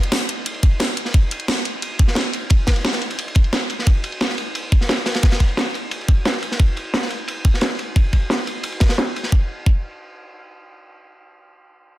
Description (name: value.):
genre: drum and bass.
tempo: 176 BPM.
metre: 4/4.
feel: straight.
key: none.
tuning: none.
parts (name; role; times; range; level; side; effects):
drum and bass drum kit; drums; 0.0-9.2 s; hi-hat, snare drum; -22 LUFS; equal; low-pass filter on snare, low-pass filter on hats, low-pass filter on perc, low-pass filter on cymbals.
crunchy breakbeat drum kit; drums; 0.1-9.3 s; ride cymbal, snare drum; -26 LUFS; equal; high-pass filter on cymbals, high-pass filter on snare, high-pass filter on room.
electronic kick drum; drums; 0.6-9.8 s; none; -15 LUFS; equal; none.
room: studio reverb.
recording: dense, heavily limited modern master.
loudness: -17 LUFS.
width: side -16 dB against mid.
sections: 0.0-9.3 A section; 9.3-12.0 B section.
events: filter sweep on drum 0.0-9.3.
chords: none.